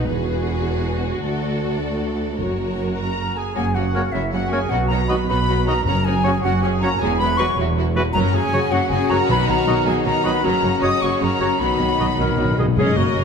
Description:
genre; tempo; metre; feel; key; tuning
cinematic, heroic adventure film score; 104 BPM (dotted quarters); 6/8; straight; B major; A4 = 440 Hz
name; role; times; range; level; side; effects
dark symphonic violin section; melody; 0.0-13.2 s; B4 to D#6; -30 LUFS; left 4 dB; none
rich symphonic violin section; second line; 0.0-13.2 s; C#4 to D#5; -29 LUFS; left 3 dB; none
clear symphonic viola section; accompaniment; 0.0-13.2 s; C#3 to A#4; -27 LUFS; right 1 dB; none
rich chamber double bass section; bass; 0.0-13.2 s; E1 to D2; -25 LUFS; right 4 dB; none
warm symphonic cello section; bass; 0.0-13.2 s; D2 to B2; -26 LUFS; right 1 dB; none
timpani; percussion; 2.4-13.2 s; F#2 to B2; -26 LUFS; left 2 dB; none
bright silver concert flute; second line; 3.0-12.6 s; E5 to D#6; -25 LUFS; left 2 dB; none
warm trumpet section; stabs; 3.0-12.6 s; B3 to D#5; -26 LUFS; right 2 dB; none
clear clarinet; second line; 3.9-13.2 s; F#4 to A#4; -29 LUFS; left 3 dB; none
bright trombone section; sustained chords; 3.9-12.6 s; C#3 to F#3; -29 LUFS; right 2 dB; none
dark French horn section; sustained chords; 3.9-13.2 s; F#3 to F#4; -28 LUFS; left 8 dB; none
clear oboe; second line; 4.0-12.7 s; B4 to D#5; -30 LUFS; equal; none
room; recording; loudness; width
moderate scoring stage reverb, RT60 1.7 s; none; -17 LUFS; side -6 dB against mid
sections
0.0-3.6 A section; 3.6-12.8 B section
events
build-up 0.0-3.6; timpani fill 11.6-12.8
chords
0.1 Eadd9; 1.2 D; 2.4 F#; 4.7 B; 5.9 F#5; 7.0 Eadd9; 8.2 F#5; 9.3 B; 10.4 F#; 11.6 B

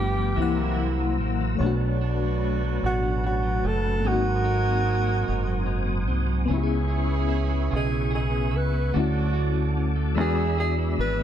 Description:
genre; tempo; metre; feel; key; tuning
slow six-eight R&B; 49 BPM (dotted quarters); 6/8; straight; unclear; A4 = 436 Hz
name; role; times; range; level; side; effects
mellow tenor saxophone; melody; 0.0-11.2 s; F#4 to B4; -28 LUFS; right 1 dB; none
semi-hollow electric guitar; second line; 0.0-11.2 s; G2 to G#4; -30 LUFS; right 7 dB; none
FM electric piano with tremolo; accompaniment; 0.0-11.2 s; E3 to F#5; -29 LUFS; left 8 dB; none
tonewheel organ; sustained chords; 0.0-11.2 s; A4 to E6; -35 LUFS; equal; overdrive, chorus vibrato, slow rotary speaker
deep dub fingered electric bass; bass; 0.0-11.2 s; F#1 to E2; -26 LUFS; equal; none
warm horn section; stabs; 0.4-11.0 s; E3 to Bb4; -35 LUFS; right 10 dB; digital delay
room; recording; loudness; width
studio reverb; none; -22 LUFS; side -10 dB against mid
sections
0.0-11.2 A section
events
none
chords
0.4 C7#11; 1.6 Bm7; 4.0 G#7; 6.5 C#m7; 8.9 Dmaj7; 10.2 E7

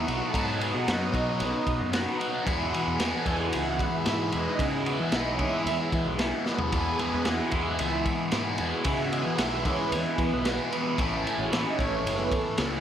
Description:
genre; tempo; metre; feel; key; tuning
psychedelic rock; 113 BPM; 4/4; straight; unclear; A4 = 439 Hz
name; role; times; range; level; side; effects
string machine, cellos; sustained chords; 0.0-12.4 s; A4 to B5; -33 LUFS; right 4 dB; ensemble chorus
overdriven semi-hollow guitar; riff; 0.0-12.8 s; E2 to F#4; -28 LUFS; left 1 dB; phaser
fuzz picked electric bass; bass; 0.0-12.8 s; F#1 to E3; -33 LUFS; equal; overdrive
crunchy breakbeat drum kit; drums; 0.1-12.7 s; kick drum, ride cymbal, snare drum, toms; -31 LUFS; equal; none
room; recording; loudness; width
light reverb, small room ambience; none; -25 LUFS; side -9 dB against mid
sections
0.0-12.8 A section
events
string machine solo 0.0-12.8; drum fill 6.5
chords
0.0 B; 2.5 E; 11.0 A

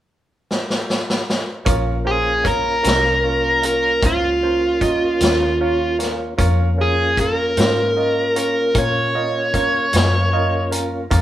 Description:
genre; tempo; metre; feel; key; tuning
slow blues; 51 BPM (dotted quarters); 12/8; straight; Bb minor; A4 = 440 Hz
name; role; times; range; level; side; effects
vintage drum kit; drums; 0.5-11.2 s; hi-hat, kick drum, snare drum; -21 LUFS; left 1 dB; none
clear grand piano; accompaniment; 1.6-11.2 s; Db4 to Bb5; -25 LUFS; right 3 dB; none
tonewheel organ; sustained chords; 1.7-11.2 s; Bb3 to F4; -28 LUFS; left 2 dB; slow rotary speaker, overdrive, chorus vibrato
vintage muted fingered electric bass; bass; 1.7-11.2 s; Bb1 to Bb2; -22 LUFS; left 1 dB; none
dark smooth lead guitar; melody; 2.1-10.7 s; F4 to Db5; -18 LUFS; right 1 dB; overdrive
room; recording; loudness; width
moderate stone room reverb, RT60 1.0 s; band playing live in one room; -16 LUFS; side -12 dB against mid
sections
0.0-1.7 A section; 1.7-11.2 B section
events
drum fill 0.5-1.7; grand piano fill 9.9-11.1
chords
0.0 N.C.; 1.7 Bbm

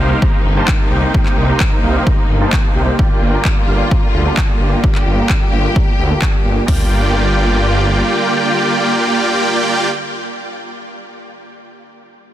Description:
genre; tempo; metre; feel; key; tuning
EDM, festival progressive house; 130 BPM; 4/4; straight; G minor; A4 = 440 Hz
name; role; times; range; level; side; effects
clear symphonic string section; sustained chords; 0.0-9.9 s; C3 to G4; -22 LUFS; equal; sidechain pumping
supersaw chords; riff; 0.0-9.9 s; Bb3 to Bb5; -17 LUFS; right 1 dB; cassette tape, sidechain pumping, low-pass filter, digital delay
detuned saw bass; bass; 0.0-8.0 s; G1 to D2; -16 LUFS; equal; sidechain pumping
house drum kit; drums; 0.2-6.8 s; hi-hat, kick drum, toms; -15 LUFS; equal; studio reverb
electronic handclaps; drums; 0.7-6.3 s; none; -25 LUFS; equal; studio reverb
room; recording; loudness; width
light reverb, digital ambience; dense, heavily limited modern master; -12 LUFS; side -12 dB against mid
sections
0.0-6.7 A section; 6.7-10.4 B section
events
filter sweep on supersaw synth 0.0-6.7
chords
0.0 Cm7; 3.0 Gm7

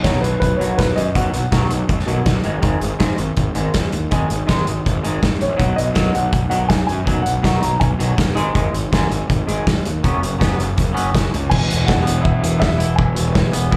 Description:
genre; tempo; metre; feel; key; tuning
indie rock; 162 BPM; 4/4; straight; B major; A4 = 440 Hz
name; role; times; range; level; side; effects
dark upright piano; melody; 0.0-2.2, 5.4-8.3, 11.5-13.7 s; B4 to A#5; -25 LUFS; equal; slapback echo
twangy electric guitar; riff; 0.0-13.8 s; E2 to E4; -26 LUFS; equal; subtle chorus, slapback echo
fuzz picked electric bass; bass; 0.0-13.8 s; E1 to F#2; -22 LUFS; equal; overdrive
loose indie drum kit; drums; 0.0-13.8 s; crash cymbal, hi-hat, kick drum, snare drum; -22 LUFS; equal; none
room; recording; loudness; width
light reverb; live gig heard through the venue's PA, club reverb; -18 LUFS; mono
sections
0.0-11.5 A section; 11.5-13.8 B section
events
none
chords
0.0 B; 2.4 G#5; 5.6 B; 8.4 G#5; 10.0 F#sus4; 11.5 E

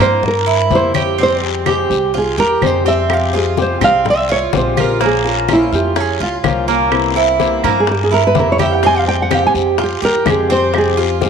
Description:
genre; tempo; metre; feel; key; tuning
latin, Cuban son and guajira; 126 BPM; 4/4; straight; F harmonic minor; A4 = 440 Hz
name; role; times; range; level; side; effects
nylon-string guitar; melody; 0.0-11.3 s; E4 to Ab5; -16 LUFS; right 2 dB; none
fingerpicked swing-style acoustic guitar; accompaniment; 0.0-11.3 s; C3 to G4; -20 LUFS; left 10 dB; none
Cuban tres; arpeggios; 0.0-11.3 s; Bb3 to G4; -18 LUFS; right 8 dB; none
upright bass; bass; 0.0-11.3 s; Bb1 to G2; -21 LUFS; left 1 dB; none
congas; percussion; 0.2-11.3 s; none; -24 LUFS; left 9 dB; none
guiro; percussion; 0.2-11.3 s; none; -28 LUFS; left 12 dB; none
claves; percussion; 0.9-11.0 s; none; -26 LUFS; right 9 dB; none
bongos; percussion; 3.1-11.3 s; none; -25 LUFS; left 13 dB; none
room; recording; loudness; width
moderate echo chamber reverb, RT60 2.1 s; 1960s-style stereo with parts hard left and right; -12 LUFS; side -6 dB against mid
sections
0.0-11.3 A section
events
nylon-string guitar solo 0.0-11.3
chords
0.0 C7; 1.2 Fmadd9; 5.0 Bbm; 6.9 C7; 8.8 Fmadd9

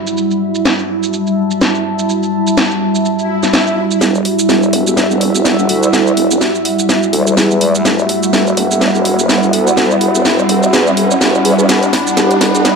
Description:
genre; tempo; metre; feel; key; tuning
bass house; 125 BPM; 4/4; swing 57% on 16ths; E minor; A4 = 440 Hz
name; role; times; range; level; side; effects
sweeping resonant pad; sustained chords; 0.0-12.8 s; G3 to F#5; -16 LUFS; left 1 dB; chorus
downlifter, swell and riser; sound effects; 0.0-0.2, 3.2-12.8 s; none; -21 LUFS; equal; none
warbly tape-like pad; texture; 0.0-12.8 s; G3 to B5; -16 LUFS; right 3 dB; chorus, built-in reverb, phaser
garage drum kit; drums; 0.1-12.8 s; hi-hat, shaker, snare drum; -16 LUFS; equal; low-pass filter on hats, low-pass filter on perc, low-pass filter on cymbals, low-pass filter on snare
vowel-sweep wobble bass; bass; 4.0-12.8 s; E1 to E2; -16 LUFS; left 1 dB; chorus, high-pass filter
room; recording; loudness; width
moderate plate reverb, RT60 1.4 s, digital ambience; dark, warm production, high-pass filter; -10 LUFS; side -5 dB against mid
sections
0.0-4.0 A section; 4.0-12.8 B section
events
swell 3.2-4.0; build-up 4.0-12.8; drum fill 4.0-12.8; riser 4.0-12.8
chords
0.0 Emadd9

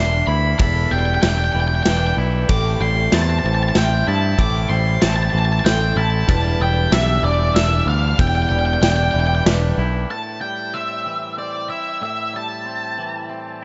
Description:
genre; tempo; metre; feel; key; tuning
post-rock; 95 BPM; 3/4; straight; A minor; A4 = 440 Hz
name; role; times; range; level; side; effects
octave-fuzz lead guitar; melody; 0.0-13.6 s; D5 to D6; -25 LUFS; equal; distortion, tape echo
pedal steel guitar; sustained chords; 0.0-10.1 s; E3 to A4; -35 LUFS; equal; none
twangy electric guitar; arpeggios; 0.0-13.6 s; E2 to E4; -29 LUFS; equal; tape echo
vibraphone with medium hard mallets; arpeggios; 0.0-10.1 s; A4 to E6; -32 LUFS; equal; tape echo
picked electric bass; bass; 0.0-10.0 s; E1 to G2; -21 LUFS; equal; none
loose indie drum kit; drums; 0.6-9.6 s; kick drum, ride cymbal, snare drum; -25 LUFS; equal; none
room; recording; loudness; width
light reverb, studio ambience; nothing above 7.8 kHz; -19 LUFS; mono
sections
0.0-10.1 A section; 10.1-13.6 B section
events
none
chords
0.0 Em7; 2.5 Am7; 6.3 Em7; 10.1 Am7

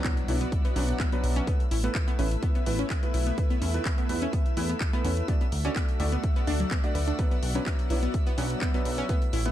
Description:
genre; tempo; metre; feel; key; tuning
progressive house; 126 BPM; 4/4; straight; B minor; A4 = 444 Hz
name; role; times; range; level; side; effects
supersaw pad; sustained chords; 0.0-9.5 s; A3 to F#5; -37 LUFS; equal; sidechain pumping
analog pluck; arpeggios; 0.0-9.5 s; F#3 to B4; -34 LUFS; left 1 dB; chorus, sidechain pumping, ping-pong delay
warm baby grand piano; stabs; 0.0-9.5 s; F#3 to D5; -34 LUFS; right 1 dB; sidechain pumping, ping-pong delay
electronic kick drum; drums; 0.0-9.2 s; none; -27 LUFS; equal; none
house drum kit; drums; 0.0-9.5 s; handclaps, hi-hat; -37 LUFS; left 1 dB; none
impact; sound effects; 0.0-1.5 s; none; -36 LUFS; equal; none
drifting glass-harmonics texture; texture; 0.2-9.5 s; E5 to E6; -42 LUFS; right 1 dB; chorus, built-in reverb, sidechain pumping
plucky analog bass; bass; 0.3-9.5 s; A1 to E2; -28 LUFS; equal; sidechain pumping
room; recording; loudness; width
digital ambience; dark, warm production; -24 LUFS; side -12 dB against mid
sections
0.0-9.5 A section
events
impact 0.0-1.5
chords
0.0 Bm; 1.5 Asus2; 3.4 Esus4; 5.3 D; 7.2 Bm

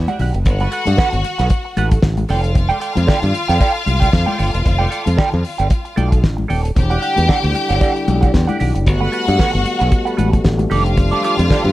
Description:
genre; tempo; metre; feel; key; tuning
disco; 114 BPM; 4/4; swing 56% on 16ths; unclear; A4 = 436 Hz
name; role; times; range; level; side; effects
bright studio string section; second line; 0.0-11.7 s; E4 to G5; -22 LUFS; left 3 dB; none
modern bright fingered electric bass; bass; 0.0-11.7 s; D#1 to G2; -17 LUFS; equal; none
semi-hollow electric guitar; accompaniment; 0.1-11.7 s; G4 to G5; -22 LUFS; right 5 dB; wah
damped 70s drum kit; drums; 0.1-11.6 s; hi-hat, kick drum, snare drum; -16 LUFS; equal; none
congas; percussion; 0.1-11.7 s; none; -25 LUFS; left 3 dB; none
mellow French horn section; sustained chords; 6.8-11.7 s; D3 to G4; -22 LUFS; left 1 dB; none
room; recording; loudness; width
small room ambience; dark, warm production; -14 LUFS; side -16 dB against mid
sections
0.0-11.7 A section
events
none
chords
0.5 Gmaj9; 2.3 F69; 6.8 Em9; 8.9 Gmaj9; 10.7 F69

